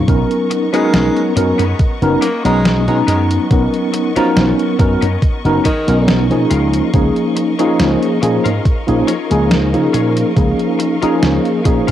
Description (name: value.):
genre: vaporwave.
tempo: 70 BPM.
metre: 4/4.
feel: straight.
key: unclear.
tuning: A4 = 440 Hz.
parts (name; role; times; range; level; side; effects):
tine electric piano; accompaniment; 0.0-11.9 s; F3 to Bb5; -14 LUFS; equal; fast stereo tremolo, analog chorus, cassette tape, analog delay.
clear studio string section; sustained chords; 0.0-11.9 s; Cb4 to Db6; -28 LUFS; left 1 dB; cassette tape.
slap bass with an envelope filter; bass; 0.1-11.9 s; Gb1 to Db3; -17 LUFS; equal; none.
detuned 8-bit digital drum machine; drums; 0.1-11.9 s; hi-hat, snare drum; -19 LUFS; equal; cassette tape.
electronic kick drum; drums; 0.1-11.8 s; none; -15 LUFS; equal; cassette tape.
twelve-string electric guitar; riff; 0.5-11.9 s; Cb4 to Db5; -27 LUFS; left 10 dB; ensemble chorus, cassette tape, analog delay.
bright tenor saxophone; melody; 0.7-6.3 s; Eb3 to Bb3; -24 LUFS; equal; vintage 12-bit sampler grit, cassette tape, tape echo.
room: light reverb, digital ambience.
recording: home recording on cassette.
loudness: -12 LUFS.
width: side -11 dB against mid.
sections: 0.0-11.9 A section.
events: none.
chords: 0.1 Cbmaj9; 6.5 Db69.